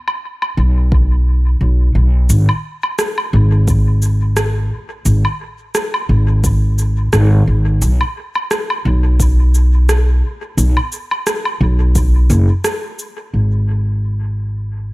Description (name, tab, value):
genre	ambient dub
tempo	87 BPM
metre	4/4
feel	swing 55% on 16ths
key	unclear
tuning	A4 = 439 Hz
part	electronic woodblock, shaker and rim click	drums	0.1-13.1 s	none	-21 LUFS	equal	low-pass filter on perc, low-pass filter on snare, low-pass filter on room, dub echo
part	upright bass	bass	0.6-14.9 s	F#1 to B1	-12 LUFS	equal	none
part	electronic kick drum	drums	0.9-12.1 s	none	-17 LUFS	equal	none
room	little or no reverb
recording	none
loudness	-12 LUFS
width	side -20 dB against mid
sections	0.0-13.3 A section; 13.3-14.9 B section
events	none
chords	none